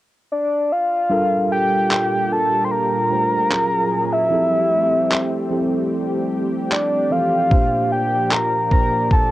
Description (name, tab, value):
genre	contemporary R&B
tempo	75 BPM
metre	4/4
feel	straight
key	G dorian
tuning	A4 = 438 Hz
part	soft octave-layered synth lead	melody	0.3-9.3 s	D5 to C6	-18 LUFS	left 1 dB	chorus, cassette tape, analog delay
part	mellow tine electric piano	accompaniment	1.1-9.3 s	Bb2 to C5	-23 LUFS	right 2 dB	medium stereo tremolo, cassette tape
part	lush unison pad	sustained chords	1.1-9.3 s	Bb2 to D5	-25 LUFS	left 1 dB	chorus, cassette tape
part	detuned 8-bit digital drum machine	drums	1.9-9.3 s	handclaps, kick drum	-18 LUFS	equal	cassette tape
room	moderate booth ambience, RT60 0.2 s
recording	home recording on cassette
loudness	-16 LUFS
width	side -16 dB against mid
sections	0.0-1.1 A section; 1.1-9.3 B section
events	none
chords	0.0 N.C.; 1.1 Gm9; 3.5 F#maj9; 4.3 Fmaj9; 7.5 Bb6